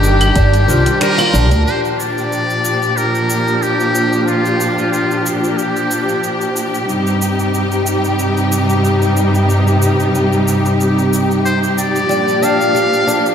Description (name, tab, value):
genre	organic downtempo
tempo	92 BPM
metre	4/4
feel	swing 54% on 16ths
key	G minor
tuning	A4 = 438 Hz
part	trumpet with metal mute	melody	0.0-6.6, 11.5-13.3 s	F4 to F5	-18 LUFS	left 1 dB	analog delay
part	clear symphonic string section	sustained chords	0.0-13.3 s	G2 to G4	-15 LUFS	equal	sidechain pumping
part	oud	arpeggios	0.0-1.7, 12.1-13.2 s	F3 to G4	-18 LUFS	equal	diffuse ambient delay
part	upright bass	bass	0.0-1.6 s	G1 to D2	-13 LUFS	equal	sidechain pumping
part	deep house drum kit	drums	0.0-13.3 s	cabasa, claves, finger snaps, hi-hat	-24 LUFS	right 1 dB	overdrive
part	electronic kick drum	drums	0.4-0.5 s	none	-16 LUFS	equal	overdrive
room	wet lush hall reverb, RT60 2.5 s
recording	dreamy mix soaked in reverb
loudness	-12 LUFS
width	side -8 dB against mid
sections	0.0-1.7 A section; 1.7-13.3 B section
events	kick drops out 1.0-1.7; band accent 1.0-1.3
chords	0.0 Cm (rootless); 1.7 Gm7; 6.9 Cm/G; 12.1 Gm7